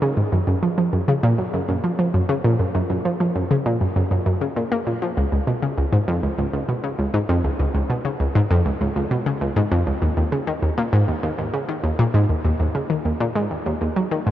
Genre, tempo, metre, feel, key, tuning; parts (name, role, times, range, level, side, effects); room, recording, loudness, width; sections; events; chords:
ambient; 99 BPM; 4/4; straight; A4 = 439 Hz
analog pluck; solo; 0.0-14.3 s; Db2 to Bb3; -19 LUFS; equal; chorus, tape echo
moderate huge ambient reverb, RT60 8.1 s; worn, warbling old tape, cassette tape, warbly pitch drift; -19 LUFS; side -12 dB against mid
0.0-14.3 A section